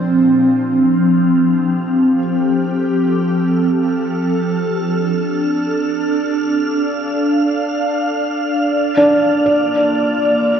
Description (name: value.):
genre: ambient.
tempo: free time.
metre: none.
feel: none.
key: unclear.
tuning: A4 = 440 Hz.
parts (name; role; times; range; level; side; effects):
ethereal airy pad; sustained chords; 0.0-10.6 s; Bb2 to F5; -14 LUFS; equal; ensemble chorus, built-in reverb, phaser.
felt-muted upright piano; arpeggios; 0.0-2.2, 9.0-10.6 s; D4 to D5; -14 LUFS; right 1 dB; diffuse ambient delay.
wind-like tuned noise texture; texture; 1.2-10.6 s; F6; -29 LUFS; right 3 dB; built-in reverb.
room: wet concert hall reverb, RT60 2.1 s.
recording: worn, warbling old tape, cassette tape, warbly pitch drift.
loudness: -14 LUFS.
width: side -8 dB against mid.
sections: 0.3-10.6 A section.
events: fade-in on synth texture 0.3-10.6.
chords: 0.3 F; 4.5 Dm7; 8.7 Bbmaj7.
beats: free time.